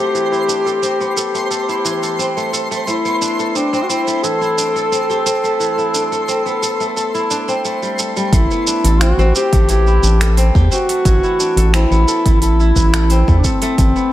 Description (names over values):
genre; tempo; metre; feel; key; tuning
organic downtempo; 88 BPM; 4/4; straight; A minor; A4 = 442 Hz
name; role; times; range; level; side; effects
mellow duduk; melody; 0.0-14.1 s; C4 to A4; -18 LUFS; left 1 dB; digital delay
kora; arpeggios; 0.0-14.1 s; E3 to A4; -21 LUFS; left 1 dB; low-pass filter, digital delay
twinkling granular texture; texture; 0.0-8.3 s; C5 to C6; -26 LUFS; right 2 dB; built-in reverb
organic electronic drum kit; drums; 0.2-14.1 s; finger snaps, hi-hat, shaker; -23 LUFS; right 3 dB; small room reverb
round analog bass; bass; 8.3-13.9 s; A1 to E2; -13 LUFS; equal; sidechain pumping
electronic kick drum; drums; 8.3-13.9 s; none; -16 LUFS; equal; small room reverb
room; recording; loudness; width
light reverb, digital ambience; none; -13 LUFS; side -14 dB against mid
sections
0.0-8.3 A section; 8.3-14.1 B section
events
none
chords
0.0 Am7